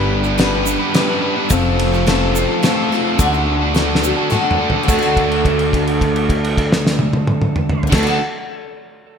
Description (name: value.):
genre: folk rock and heartland rock.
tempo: 107 BPM.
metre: 3/4.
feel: straight.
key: D major.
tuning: A4 = 440 Hz.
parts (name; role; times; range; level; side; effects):
picked acoustic archtop guitar; accompaniment; 0.0-8.2 s; D3 to B4; -22 LUFS; left 5 dB; wide subtle chorus.
crunchy overdriven guitar; riff; 0.0-8.2 s; D3 to B4; -18 LUFS; right 1 dB; wide subtle chorus.
upright bass; bass; 0.0-8.2 s; F1 to D2; -22 LUFS; equal; none.
egg shaker; percussion; 0.2-5.1 s; none; -29 LUFS; right 13 dB; none.
cloth-damped thuddy drum kit; drums; 0.4-8.1 s; crash cymbal, kick drum, ride cymbal, snare drum, toms; -19 LUFS; equal; gated reverb.
electric slide guitar; second line; 4.9-8.2 s; A4; -24 LUFS; right 3 dB; ping-pong delay.
room: light reverb, studio reverb.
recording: bright 1980s-style digital production.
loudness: -14 LUFS.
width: side -7 dB against mid.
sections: 0.0-4.9 A section; 4.9-8.3 B section.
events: drum fill 3.8-4.9; held note 4.9-7.9.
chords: 0.0 G; 1.5 F; 3.2 D.